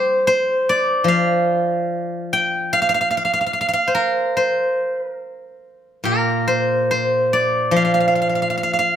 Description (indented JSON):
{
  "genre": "chinese traditional, Chinese solo plucked strings",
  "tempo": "73 BPM",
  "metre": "4/4",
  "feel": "rubato",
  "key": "C shang mode",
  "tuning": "A4 = 437 Hz",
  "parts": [
    { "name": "steel-string zither", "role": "solo", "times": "0.0-9.0 s", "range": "Bb2 to G5", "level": "-16 LUFS", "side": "equal", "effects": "none" }
  ],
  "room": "light reverb",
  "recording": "close, detailed microphones",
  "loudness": "-16 LUFS",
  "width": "side -9 dB against mid",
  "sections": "0.0-9.0 A section",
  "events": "none",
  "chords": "none"
}